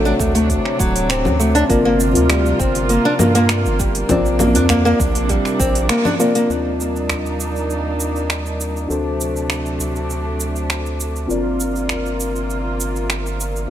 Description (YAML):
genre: organic downtempo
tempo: 100 BPM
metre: 4/4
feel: straight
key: G minor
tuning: A4 = 441 Hz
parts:
  - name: muted felt-like synth keys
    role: accompaniment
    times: 0.0-13.7 s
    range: C4 to D5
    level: -22 LUFS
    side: left 2 dB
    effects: chorus, sidechain pumping, tape echo
  - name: warm chamber string section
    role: sustained chords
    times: 0.0-13.7 s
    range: C3 to F4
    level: -24 LUFS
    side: right 1 dB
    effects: sidechain pumping
  - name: nylon-string guitar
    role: arpeggios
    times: 0.0-6.5 s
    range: F#3 to D4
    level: -18 LUFS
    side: equal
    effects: tape echo
  - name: round analog bass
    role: bass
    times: 0.0-13.7 s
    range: D1 to G2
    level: -22 LUFS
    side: right 1 dB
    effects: sidechain pumping
  - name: organic electronic drum kit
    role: drums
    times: 0.1-13.7 s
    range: congas, finger snaps, hi-hat, shaker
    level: -23 LUFS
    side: equal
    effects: none
  - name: electronic kick drum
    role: drums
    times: 0.2-5.7 s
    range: none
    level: -22 LUFS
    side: right 1 dB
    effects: none
  - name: udu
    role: percussion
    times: 2.1-12.0 s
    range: none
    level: -27 LUFS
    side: left 1 dB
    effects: none
room: light reverb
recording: none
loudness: -16 LUFS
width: side -11 dB against mid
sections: 0.0-6.5 A section; 6.5-13.7 B section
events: band accent 5.9-6.2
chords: 0.0 D7; 1.7 Gm7; 4.1 Bbadd9; 6.5 Ebmaj7; 8.9 D7; 11.3 Gm7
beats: 0.49 1.09 | 1.70 2.29 2.90 3.50 | 4.09 4.70 5.29 5.89 | 6.50 7.09 7.70 8.29 | 8.89 9.49 10.10 10.70 | 11.29 11.89 12.49 13.10 | 13.70